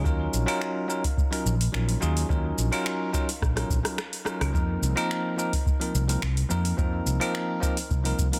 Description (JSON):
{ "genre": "sunset chillout", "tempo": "107 BPM", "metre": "4/4", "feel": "straight", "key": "unclear", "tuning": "A4 = 440 Hz", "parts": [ { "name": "bell-like tine electric piano", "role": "accompaniment", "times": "0.0-8.4 s", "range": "F3 to Bb4", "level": "-31 LUFS", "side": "equal", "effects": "tape echo" }, { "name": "fretless electric bass", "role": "bass", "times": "0.0-8.3 s", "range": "Bb1 to F2", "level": "-28 LUFS", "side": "equal", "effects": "lush chorus" }, { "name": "deep house drum kit", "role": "drums", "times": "0.1-8.4 s", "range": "claves, finger snaps, hi-hat, rim click, shaker", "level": "-35 LUFS", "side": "equal", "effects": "overdrive, soft clipping on snare" }, { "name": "electronic kick drum", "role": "drums", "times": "0.1-8.3 s", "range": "none", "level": "-29 LUFS", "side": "equal", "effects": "none" } ], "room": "light reverb", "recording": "dense, heavily limited modern master", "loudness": "-26 LUFS", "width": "mono", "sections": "0.0-4.5 A section; 4.5-8.4 A section", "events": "drum fill 3.4-4.5", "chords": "0.0 Ebm9; 4.5 F7sus4" }